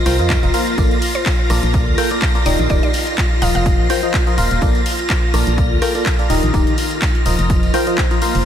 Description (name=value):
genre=piano house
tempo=125 BPM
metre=4/4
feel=swing 55% on 16ths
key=Bb major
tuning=A4 = 439 Hz
part: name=string machine, violins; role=sustained chords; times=0.0-8.4 s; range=F4 to Bb6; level=-23 LUFS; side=equal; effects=ensemble chorus, sidechain pumping
part: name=barking FM electric piano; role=riff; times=0.0-8.4 s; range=Eb3 to G5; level=-20 LUFS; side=left 1 dB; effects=phaser, sidechain pumping, tape echo
part: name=organ-like FM bass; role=bass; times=0.0-8.4 s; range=Eb1 to F2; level=-19 LUFS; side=equal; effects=sidechain pumping
part: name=house drum kit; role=drums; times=0.1-8.4 s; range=handclaps, hi-hat, rim click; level=-24 LUFS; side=equal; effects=none
part: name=tambourine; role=percussion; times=0.1-8.4 s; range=none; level=-32 LUFS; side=left 2 dB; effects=none
part: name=electronic kick drum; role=drums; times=0.3-8.1 s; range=none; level=-18 LUFS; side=equal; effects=none
part: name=mallet-like synth pluck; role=melody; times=1.1-3.6 s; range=C5 to F5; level=-28 LUFS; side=equal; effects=chorus, tape echo
room=moderate cathedral reverb, RT60 6.4 s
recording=dreamy mix soaked in reverb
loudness=-14 LUFS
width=side -9 dB against mid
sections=0.0-8.4 A section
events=drop 0.0-8.4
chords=0.0 F7sus4; 0.8 Bbmaj7; 2.5 Ebmaj7; 3.7 F7sus4; 4.6 Bbmaj7; 6.3 Ebmaj7; 7.5 F7sus4